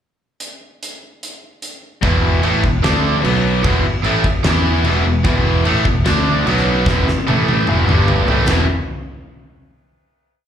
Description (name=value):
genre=hard rock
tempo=149 BPM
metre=4/4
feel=straight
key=unclear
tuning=A4 = 440 Hz
part: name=big rock drum kit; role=drums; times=0.4-8.6 s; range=crash cymbal, hi-hat, kick drum, ride cymbal, snare drum, toms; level=-20 LUFS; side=left 1 dB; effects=none
part: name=distorted electric guitar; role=riff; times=2.0-8.7 s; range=E2 to E4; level=-20 LUFS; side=left 11 dB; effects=overdrive, slapback echo
part: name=overdriven semi-hollow guitar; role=riff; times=2.0-8.6 s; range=E2 to E4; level=-19 LUFS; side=right 10 dB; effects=slapback echo
part: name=picked electric bass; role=bass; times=2.0-8.7 s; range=E1 to E2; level=-18 LUFS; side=equal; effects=none
room=light reverb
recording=live gig heard through the venue's PA, club reverb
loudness=-13 LUFS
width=side -9 dB against mid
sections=0.4-2.0 pickup bar; 2.0-8.5 riff; 8.5-10.1 final chord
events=drum fill 6.9-8.5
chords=0.4 N.C.; 2.0 E5; 2.8 D5; 3.2 B5; 3.6 E5; 6.1 D5; 6.5 B5; 6.9 E5; 7.9 G5; 8.3 A5; 8.5 E5